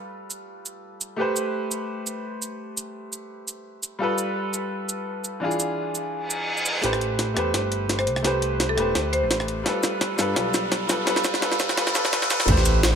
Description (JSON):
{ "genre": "liquid drum and bass", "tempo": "170 BPM", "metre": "4/4", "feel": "swing 53% on 16ths", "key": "A minor", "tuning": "A4 = 440 Hz", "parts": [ { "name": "bright concert grand piano", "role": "accompaniment", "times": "0.0-13.0 s", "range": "E3 to C5", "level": "-26 LUFS", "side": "equal", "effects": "dub echo" }, { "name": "jungle sampler-style drum kit", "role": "drums", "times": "0.3-12.9 s", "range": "cabasa, crash cymbal, hi-hat, rim click, snare drum", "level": "-25 LUFS", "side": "equal", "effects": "none" }, { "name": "reverse cymbal, riser and sub drop", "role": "sound effects", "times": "6.2-13.0 s", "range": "none", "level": "-30 LUFS", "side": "equal", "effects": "none" }, { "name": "smooth synth bass", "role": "bass", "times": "6.8-13.0 s", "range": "D1 to G2", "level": "-27 LUFS", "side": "equal", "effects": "none" }, { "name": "marimba with hard mallets", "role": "melody", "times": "8.0-9.4 s", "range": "A4 to C5", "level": "-29 LUFS", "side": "left 1 dB", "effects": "dub echo" }, { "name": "electronic kick drum", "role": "drums", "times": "12.5-12.6 s", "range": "none", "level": "-20 LUFS", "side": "equal", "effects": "overdrive" }, { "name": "jungle sampler-style drum kit", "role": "drums", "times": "12.5-13.0 s", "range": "ride cymbal, snare drum", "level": "-27 LUFS", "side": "right 2 dB", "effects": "high-pass filter on cymbals, high-pass filter on snare" } ], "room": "moderate plate reverb, RT60 2.1 s", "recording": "high-pass filter", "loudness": "-22 LUFS", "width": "side -7 dB against mid", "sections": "0.0-6.8 A section; 6.8-12.5 B section", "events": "reverse cymbal 6.2-6.8; build-up 6.8-12.5; drum fill 6.8-12.5; riser 6.8-12.5; filter sweep 6.8-12.5; impact 12.5-13.0", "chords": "0.0 G9; 1.2 Am9; 4.0 G9; 5.4 E7b9; 6.8 Am9; 9.7 G9" }